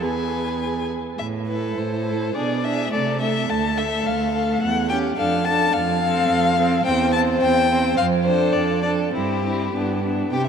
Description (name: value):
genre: quick classical-period movement for string quartet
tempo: 105 BPM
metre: 2/4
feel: straight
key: A minor, C major from 5.7 s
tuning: A4 = 441 Hz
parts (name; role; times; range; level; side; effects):
- dark violin; melody; 0.0-10.5 s; G4 to A5; -23 LUFS; left 5 dB; none
- rich violin; second line; 0.0-10.4 s; D4 to C5; -26 LUFS; left 2 dB; none
- warm viola; accompaniment; 0.0-10.3 s; A3 to G#4; -26 LUFS; right 3 dB; none
- rich cello; bass; 0.0-10.5 s; D2 to C3; -25 LUFS; right 6 dB; none
room: wet cathedral reverb, RT60 5.2 s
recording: in a vast, echoing space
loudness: -19 LUFS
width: side -7 dB against mid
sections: 0.0-1.2 A section; 1.2-10.3 B section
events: none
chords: 0.0 E; 1.2 Am; 2.3 G#dim/B; 2.9 Am/C; 3.5 Dm; 4.6 C#dim/E; 5.2 Dm/F; 5.7 F; 6.9 C/E; 8.0 Dm/F; 9.1 C/G; 9.7 G